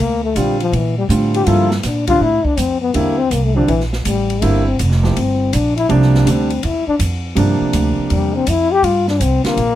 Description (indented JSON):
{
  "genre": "modal jazz",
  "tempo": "163 BPM",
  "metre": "4/4",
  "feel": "swing 66% on 8ths",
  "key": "G dorian",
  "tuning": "A4 = 439 Hz",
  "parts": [
    { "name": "breathy trombone", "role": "second line", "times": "0.0-9.8 s", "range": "E3 to G4", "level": "-17 LUFS", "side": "left 5 dB", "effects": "none" },
    { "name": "upright bass", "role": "bass", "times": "0.0-9.8 s", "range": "F1 to Bb2", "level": "-17 LUFS", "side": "right 1 dB", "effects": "none" },
    { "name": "warm baby grand piano", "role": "accompaniment", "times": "0.4-9.6 s", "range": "C3 to A4", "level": "-18 LUFS", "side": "right 2 dB", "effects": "none" },
    { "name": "open jazz drum kit", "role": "drums", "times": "0.4-9.7 s", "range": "hi-hat, kick drum, ride cymbal, snare drum", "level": "-26 LUFS", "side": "equal", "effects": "none" }
  ],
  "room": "light reverb",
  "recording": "close, detailed microphones",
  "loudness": "-13 LUFS",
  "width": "side -12 dB against mid",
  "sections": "0.0-9.8 A section",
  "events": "trombone solo 0.0-9.8",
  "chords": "0.0 Gm9; 2.9 Gm7"
}